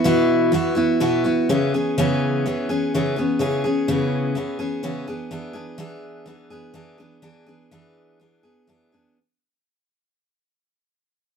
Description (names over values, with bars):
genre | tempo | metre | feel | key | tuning
rock | 125 BPM | 4/4 | straight | E mixolydian | A4 = 440 Hz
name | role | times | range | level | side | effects
picked steel-string acoustic guitar | accompaniment | 0.0-9.2 s | B2 to G#4 | -19 LUFS | equal | none
room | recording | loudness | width
moderate studio reverb, RT60 0.7 s | band playing live in one room | -19 LUFS | side -6 dB against mid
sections
0.0-9.2 A section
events
fade-out 0.0-9.2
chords
0.0 Bsus4; 1.5 C#m7; 5.1 E7